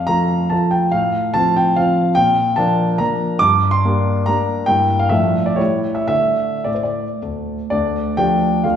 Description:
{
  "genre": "classical, romantic triple-time dance for piano with dotted rhythms",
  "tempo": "102-155 BPM",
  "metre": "3/4",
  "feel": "rubato",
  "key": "D minor",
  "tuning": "A4 = 440 Hz",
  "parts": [
    { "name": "warm concert grand piano", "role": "solo", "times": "0.0-8.8 s", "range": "D2 to D6", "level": "-15 LUFS", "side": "equal", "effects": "none" }
  ],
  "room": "wet recital hall reverb, RT60 1.8 s",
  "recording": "heard from further back in the room",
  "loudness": "-15 LUFS",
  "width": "side -8 dB against mid",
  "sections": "0.0-7.7 A section; 7.7-8.8 A section",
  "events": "none",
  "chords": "0.0 Dm/F (rootless); 0.9 F/A; 2.2 Bbmaj7; 3.4 Gm; 4.7 Edim/G; 5.1 Dm/A; 5.6 A7; 6.1 D5; 7.7 Dm"
}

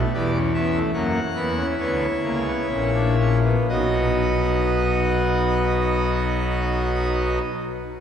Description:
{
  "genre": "classical, baroque-style 4-part fugue for pipe organ",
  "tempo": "56-79 BPM",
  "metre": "3/4",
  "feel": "straight",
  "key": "unclear",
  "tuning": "A4 = 439 Hz",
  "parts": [
    { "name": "pipe organ, full organ", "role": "solo", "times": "0.0-7.4 s", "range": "A#1 to F#5", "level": "-19 LUFS", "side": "equal", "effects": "none" }
  ],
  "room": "wet church reverb, RT60 3.4 s",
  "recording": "heard from further back in the room",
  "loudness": "-19 LUFS",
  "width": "side -8 dB against mid",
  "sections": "0.0-3.7 A section; 3.7-8.0 B section",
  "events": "slowing down 0.0-3.7",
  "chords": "0.1 Em; 0.9 F#7; 3.7 B"
}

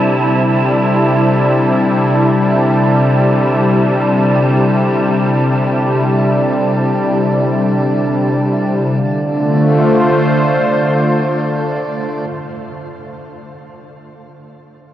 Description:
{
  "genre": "ambient",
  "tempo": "free time",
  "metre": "none",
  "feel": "none",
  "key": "D minor",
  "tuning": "A4 = 440 Hz",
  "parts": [
    { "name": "warm analog pad", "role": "sustained chords", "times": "0.0-12.7 s", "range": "C3 to C5", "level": "-13 LUFS", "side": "left 1 dB", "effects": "chorus, shimmer reverb" },
    { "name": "pedal harmonium", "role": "drone", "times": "0.0-12.3 s", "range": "D3 to D4", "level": "-20 LUFS", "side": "right 1 dB", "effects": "none" },
    { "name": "wind-like tuned noise texture", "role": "texture", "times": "0.0-9.0 s", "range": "A5", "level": "-24 LUFS", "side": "right 4 dB", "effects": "built-in reverb, shimmer reverb" },
    { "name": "tine electric piano", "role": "arpeggios", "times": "2.5-14.9 s", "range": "E5 to G5", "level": "-31 LUFS", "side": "equal", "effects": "none" }
  ],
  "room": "wet huge ambient reverb, RT60 8.0 s",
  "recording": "worn, warbling old tape, cassette tape, warbly pitch drift",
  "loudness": "-11 LUFS",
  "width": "side -12 dB against mid",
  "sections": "0.0-9.0 A section; 9.0-12.6 B section",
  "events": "none",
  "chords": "0.0 C; 9.0 Dm7"
}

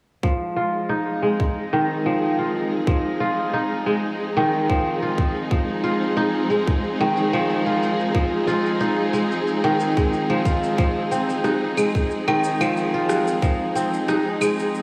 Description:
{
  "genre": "organic downtempo",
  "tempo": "91 BPM",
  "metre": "4/4",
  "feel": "swing 53% on 16ths",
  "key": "F minor pentatonic",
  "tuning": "A4 = 440 Hz",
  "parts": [
    { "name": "warm symphonic string section", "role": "sustained chords", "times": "0.2-14.8 s", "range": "F3 to Ab4", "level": "-28 LUFS", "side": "equal", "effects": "sidechain pumping" },
    { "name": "kora", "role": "arpeggios", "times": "0.2-14.8 s", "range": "Eb3 to F4", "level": "-24 LUFS", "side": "equal", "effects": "low-pass filter, tape echo" },
    { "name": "electronic kick drum", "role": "drums", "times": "0.2-13.6 s", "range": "none", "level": "-24 LUFS", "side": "equal", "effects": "overdrive" },
    { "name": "electronic shaker, rim click and claves", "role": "drums", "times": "0.2-14.8 s", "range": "none", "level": "-31 LUFS", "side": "equal", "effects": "overdrive, low-pass filter on perc, low-pass filter on snare, low-pass filter on room" },
    { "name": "drifting glass-harmonics texture", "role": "texture", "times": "0.9-14.8 s", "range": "Eb4 to Eb5", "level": "-36 LUFS", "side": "equal", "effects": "none" }
  ],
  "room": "wet lush hall reverb, RT60 2.7 s",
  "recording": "dreamy mix soaked in reverb, small room ambience",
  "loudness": "-22 LUFS",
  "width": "mono",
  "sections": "0.2-14.8 A section",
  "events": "none",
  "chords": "0.2 Fm7"
}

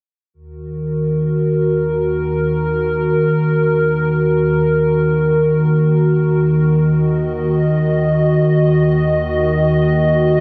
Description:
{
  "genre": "dubstep",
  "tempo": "free time",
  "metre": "none",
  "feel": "none",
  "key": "Eb minor",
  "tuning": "A4 = 439 Hz",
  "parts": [
    { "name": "evolving wavetable pad", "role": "sustained chords", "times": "0.6-10.4 s", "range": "Eb2 to Eb5", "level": "-16 LUFS", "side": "equal", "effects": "chorus, built-in reverb" }
  ],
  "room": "moderate lush hall reverb, RT60 2.2 s",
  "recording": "dense, heavily limited modern master",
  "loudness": "-16 LUFS",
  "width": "mono",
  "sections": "0.3-10.4 A section",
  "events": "none",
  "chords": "0.3 Ebm"
}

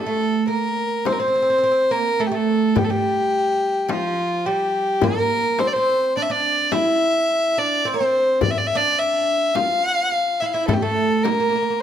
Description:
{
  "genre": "Arabic maqam ensemble",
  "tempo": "106 BPM (eighths)",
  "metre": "10/8",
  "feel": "straight",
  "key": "A maqam kurd",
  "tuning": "A4 = 440 Hz",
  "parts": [
    { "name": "warm violin", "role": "melody", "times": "0.0-11.8 s", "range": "F4 to F5", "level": "-19 LUFS", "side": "left 1 dB", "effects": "none" },
    { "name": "oud", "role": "second line", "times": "0.0-11.8 s", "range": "F3 to F4", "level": "-24 LUFS", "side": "right 5 dB", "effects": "none" },
    { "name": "darbuka", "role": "percussion", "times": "0.8-11.5 s", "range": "none", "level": "-26 LUFS", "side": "left 3 dB", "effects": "none" },
    { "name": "frame drum", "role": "percussion", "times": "1.1-11.5 s", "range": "none", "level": "-26 LUFS", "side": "left 8 dB", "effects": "none" }
  ],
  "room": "light reverb",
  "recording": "close, detailed microphones",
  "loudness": "-17 LUFS",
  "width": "side -9 dB against mid",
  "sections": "0.0-11.8 A section",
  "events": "none",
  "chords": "none"
}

